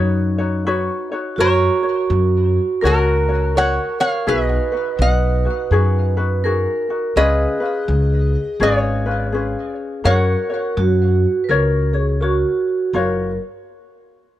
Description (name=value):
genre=Hawaiian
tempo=83 BPM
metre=4/4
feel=swing 62% on 8ths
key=F# major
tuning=A4 = 440 Hz
part: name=lap resonator guitar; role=melody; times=0.0-12.2 s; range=F#4 to F#5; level=-21 LUFS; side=right 1 dB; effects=tape echo
part: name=vibraphone with medium mallets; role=second line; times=0.0-13.4 s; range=D#4 to B4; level=-21 LUFS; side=right 3 dB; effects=none
part: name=ukulele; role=accompaniment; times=0.0-13.3 s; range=C#4 to C#5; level=-23 LUFS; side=left 4 dB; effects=none
part: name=upright bass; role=bass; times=0.0-13.4 s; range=F#1 to F#2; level=-18 LUFS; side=left 1 dB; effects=none
room=little or no reverb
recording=dry, close 1970s-style studio recording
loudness=-16 LUFS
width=side -13 dB against mid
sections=0.0-1.4 A section; 1.4-12.9 B section; 12.9-14.4 C section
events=none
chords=0.0 Badd9; 1.4 F#; 4.3 B6; 7.2 C#7; 10.1 F#; 12.9 F#maj7